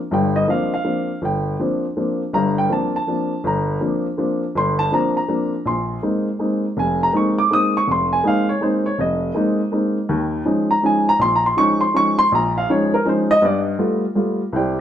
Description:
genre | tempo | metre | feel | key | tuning
jazz | 162 BPM | 3/4 | swing 64% on 8ths | Bb dorian from 5.7 s | A4 = 440 Hz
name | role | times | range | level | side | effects
warm upright piano | solo | 0.1-14.8 s | F1 to Eb6 | -17 LUFS | equal | none
room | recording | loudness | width
wet stone room reverb, RT60 1.1 s | band playing live in one room | -17 LUFS | side -10 dB against mid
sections
0.0-5.7 A section; 5.7-14.5 A section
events
none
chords
0.0 C9sus4; 5.7 Bb9sus4; 10.1 Eb9sus4; 13.4 G9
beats
| 0.11 0.48 0.85 | 1.22 1.59 1.96 | 2.33 2.70 3.06 | 3.43 3.80 4.17 | 4.54 4.91 5.28 | 5.65 6.02 6.39 | 6.76 7.13 7.50 | 7.87 8.24 8.61 | 8.98 9.35 9.72 | 10.09 10.46 10.82 | 11.19 11.56 11.93 | 12.30 12.67 13.04 | 13.41 13.78 14.15 | 14.52

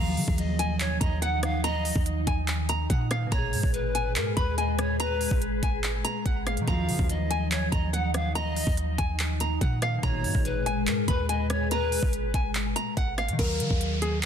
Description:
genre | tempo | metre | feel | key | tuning
hip hop, trap | 143 BPM | 4/4 | half-time | Eb minor | A4 = 440 Hz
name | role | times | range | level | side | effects
nylon-string guitar | melody | 0.0-14.2 s | Ab4 to Cb6 | -32 LUFS | left 1 dB | tape echo
breathy polished pan flute | second line | 0.0-12.1 s | Bb4 to Gb5 | -33 LUFS | left 3 dB | tape echo
glassy digital keys | accompaniment | 0.0-14.3 s | Bb2 to F5 | -35 LUFS | equal | chorus
glassy FM pad | sustained chords | 0.0-13.4 s | Eb3 to Cb5 | -34 LUFS | left 1 dB | ensemble chorus, built-in reverb
clean 808-style bass | bass | 0.0-14.3 s | Ab1 to Eb3 | -29 LUFS | equal | none
trap drum kit | drums | 0.2-14.3 s | crash cymbal, handclaps, hi-hat, kick drum, rim click | -29 LUFS | equal | none
chorused polysynth | stabs | 6.7-7.1, 10.0-10.4 s | Bb1 to F3 | -35 LUFS | right 3 dB | none
downlifter | sound effects | 13.4-14.3 s | none | -33 LUFS | equal | none
room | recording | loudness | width
digital ambience | dense, heavily limited modern master | -24 LUFS | side -8 dB against mid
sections
0.0-13.4 A section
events
none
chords
0.0 Ebmadd9; 3.3 Abmadd9; 6.7 Ebmadd9; 10.0 Abmadd9; 13.4 Ebmadd9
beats
0.38 0.80 1.22 | 1.64 2.06 2.48 2.90 | 3.32 3.74 4.16 4.58 | 5.00 5.42 5.84 6.26 | 6.68 7.09 7.51 7.93 | 8.35 8.77 9.19 9.61 | 10.03 10.45 10.87 11.29 | 11.71 12.13 12.55 12.97 | 13.39 13.81 14.23

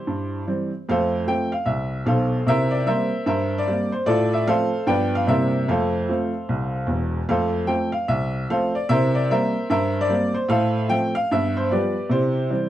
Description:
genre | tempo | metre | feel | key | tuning
jazz, stride piano | 150 BPM | 4/4 | swing 63% on 8ths | F major | A4 = 440 Hz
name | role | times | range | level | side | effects
clear upright piano | solo | 0.0-12.7 s | E1 to G5 | -20 LUFS | equal | none
room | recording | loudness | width
small room ambience | dry, close 1970s-style studio recording | -20 LUFS | side -12 dB against mid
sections
0.0-7.3 A section; 7.3-12.7 A section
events
none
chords
0.0 C; 0.9 F; 2.5 C7; 3.3 C5/G; 4.1 F/A; 4.9 G7; 5.3 C7; 5.7 F; 8.9 C7; 9.7 C5/G; 10.5 F/A; 11.3 G7; 12.1 C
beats
0.07 0.47 | 0.88 1.28 1.68 2.08 | 2.48 2.88 3.28 3.68 | 4.08 4.48 4.88 5.28 | 5.68 6.08 6.48 6.88 | 7.29 7.69 8.09 8.49 | 8.89 9.29 9.69 10.10 | 10.50 10.90 11.30 11.70 | 12.10 12.51

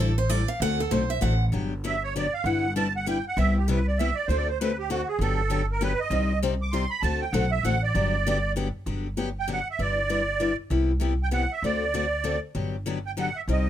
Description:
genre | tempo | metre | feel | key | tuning
acoustic string swing (jazz manouche) | 196 BPM | 3/4 | swing 60% on 8ths | G major | A4 = 440 Hz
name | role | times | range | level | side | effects
picked steel-string acoustic guitar | second line | 0.0-1.4 s | A4 to F#5 | -28 LUFS | right 3 dB | slapback echo
picked steel-string acoustic guitar | accompaniment | 0.0-13.7 s | C3 to D5 | -29 LUFS | left 5 dB | none
upright bass | bass | 0.0-13.7 s | G1 to D2 | -27 LUFS | equal | none
musette accordion | melody | 1.9-13.7 s | F#4 to D6 | -27 LUFS | right 4 dB | none
room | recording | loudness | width
little or no reverb | close, detailed microphones | -23 LUFS | side -11 dB against mid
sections
0.0-1.5 A section; 1.5-8.9 A section; 8.9-13.7 B section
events
steel-string acoustic guitar solo 0.0-1.5; accordion solo 1.5-8.9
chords
0.0 A7sus4; 0.6 D7; 1.5 Gmaj7; 2.4 Em7/G; 3.4 Cmaj7; 4.3 D7; 5.2 Gmaj7; 6.1 Cmadd9; 7.0 D7; 7.9 Gmaj7; 9.8 Em7/G; 10.7 Cmaj7; 11.6 D7; 12.6 Gmaj7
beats
0.00 0.31 | 0.61 0.92 1.22 | 1.53 1.83 2.14 | 2.44 2.75 3.05 | 3.36 3.67 3.97 | 4.28 4.58 4.89 | 5.19 5.50 5.81 | 6.11 6.42 6.72 | 7.03 7.34 7.64 | 7.95 8.26 8.56 | 8.87 9.18 9.48 | 9.79 10.10 10.40 | 10.71 11.02 11.33 | 11.63 11.94 12.25 | 12.55 12.86 13.17 | 13.48

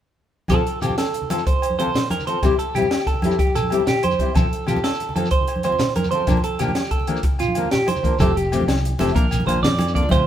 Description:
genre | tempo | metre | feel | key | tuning
highlife guitar band | 125 BPM (dotted quarters) | 12/8 | straight | F major | A4 = 439 Hz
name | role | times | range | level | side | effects
fingerpicked steel-string acoustic guitar | accompaniment | 0.5-10.2 s | F3 to Bb4 | -24 LUFS | left 5 dB | none
clean electric guitar | arpeggios | 0.5-10.3 s | F4 to D5 | -23 LUFS | right 4 dB | phaser
compact cocktail drum kit | drums | 0.5-10.2 s | hi-hat, kick drum, snare drum | -22 LUFS | equal | none
agogo bells | percussion | 0.5-10.3 s | none | -32 LUFS | left 5 dB | none
congas | percussion | 0.5-10.2 s | none | -26 LUFS | right 1 dB | none
shekere | percussion | 0.5-10.2 s | none | -29 LUFS | right 1 dB | none
fingered electric bass | bass | 8.2-10.3 s | F1 to F2 | -22 LUFS | equal | none
room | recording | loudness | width
moderate stone room reverb, RT60 1.1 s | band playing live in one room | -18 LUFS | side -10 dB against mid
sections
0.5-8.2 A section; 8.2-10.3 B section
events
none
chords
0.5 F; 2.4 C; 4.4 F; 6.3 Bb; 8.2 Fadd9; 9.2 Bb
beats
| 0.50 0.98 1.46 1.94 | 2.43 2.91 3.39 3.87 | 4.35 4.83 5.32 5.80 | 6.28 6.76 7.24 7.72 | 8.20 8.68 9.16 9.64 | 10.12

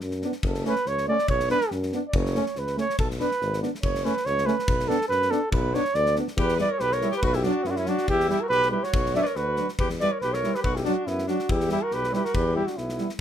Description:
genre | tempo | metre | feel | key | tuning
balkan folk, Balkan brass band | 141 BPM | 2/4 | swing 54% on 16ths | B minor, E dorian sharp4 from 6.4 s | A4 = 441 Hz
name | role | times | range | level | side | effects
warm tuba | bass | 0.0-13.2 s | F#1 to F#2 | -29 LUFS | left 1 dB | none
gated 80s drum kit | percussion | 0.0-13.1 s | kick drum, snare drum | -30 LUFS | left 1 dB | none
bright trombone | accompaniment | 0.2-13.1 s | C#4 to E4 | -32 LUFS | left 5 dB | none
mellow euphonium | accompaniment | 0.2-13.1 s | F#3 to B3 | -31 LUFS | right 5 dB | none
dark cornet | melody | 0.5-13.1 s | E4 to E5 | -25 LUFS | right 2 dB | none
clear alto saxophone | second line | 6.4-13.1 s | B3 to C#5 | -32 LUFS | left 4 dB | none
room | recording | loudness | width
light reverb | minimal, uncompressed stereo recording | -22 LUFS | side -9 dB against mid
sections
0.0-6.4 A section; 6.4-13.2 B section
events
cornet solo 0.0-6.4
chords
0.4 F#m; 1.3 Bm; 2.1 F#m; 3.0 Bm; 3.8 F#m; 4.7 Bm; 6.4 Em; 7.2 Bm; 8.1 Em; 8.9 Bm; 9.8 Em; 10.6 Bm; 11.5 Em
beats
0.01 | 0.43 0.86 | 1.28 1.71 | 2.13 2.55 | 2.98 3.40 | 3.83 4.25 | 4.67 5.10 | 5.53 5.95 | 6.38 6.80 | 7.23 7.65 | 8.08 8.51 | 8.93 9.36 | 9.79 10.21 | 10.64 11.06 | 11.49 11.91 | 12.34 12.76 | 13.19

